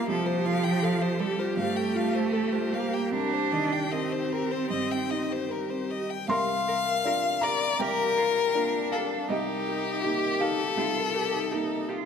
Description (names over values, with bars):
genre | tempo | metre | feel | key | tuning
neoclassical piano and strings | 78 BPM | 4/4 | uneven beats, rubato | unclear | A4 = 440 Hz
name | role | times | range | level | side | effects
clear violin | melody | 0.0-11.9 s | G4 to G5 | -29 LUFS | left 6 dB | none
rich cello | second line | 0.0-12.1 s | F3 to G4 | -30 LUFS | right 4 dB | none
clear viola | accompaniment | 0.0-12.0 s | G4 to Bb4 | -36 LUFS | equal | none
felt-muted upright piano | accompaniment | 0.0-12.1 s | C2 to C6 | -32 LUFS | right 2 dB | none
vibraphone with soft mallets | arpeggios | 0.1-12.0 s | C4 to F5 | -36 LUFS | left 6 dB | tape echo
room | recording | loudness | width
moderate concert hall reverb, RT60 2.0 s | none | -25 LUFS | side -7 dB against mid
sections
0.0-6.3 A section; 6.3-12.1 B section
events
none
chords
0.1 Fadd9/C; 3.1 Cm7; 6.3 Bbadd9/C; 9.3 Ebadd9/C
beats
| 0.09 0.82 1.57 2.33 | 3.12 3.92 4.71 5.49 | 6.29 7.05 7.79 8.54 | 9.29 10.04 10.77 11.51